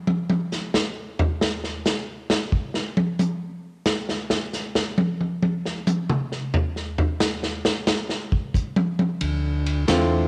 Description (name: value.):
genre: soul jazz organ trio.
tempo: 90 BPM.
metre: 4/4.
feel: swing 67% on 8ths.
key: unclear.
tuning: A4 = 438 Hz.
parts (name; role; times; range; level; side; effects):
vintage drum kit; drums; 0.1-10.1 s; hi-hat, kick drum, ride cymbal, snare drum, toms; -25 LUFS; equal; cassette tape.
tonewheel organ; bass; 9.2-10.3 s; D2 to E2; -25 LUFS; equal; chorus vibrato, slow rotary speaker.
archtop guitar, miked and amplified; accompaniment; 9.9-10.3 s; D3 to F4; -22 LUFS; equal; none.
room: light reverb, studio ambience.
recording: home recording on cassette.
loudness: -24 LUFS.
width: mono.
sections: 0.0-10.3 A section.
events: drum solo 0.0-9.2.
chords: 0.0 N.C.; 9.2 Dm7.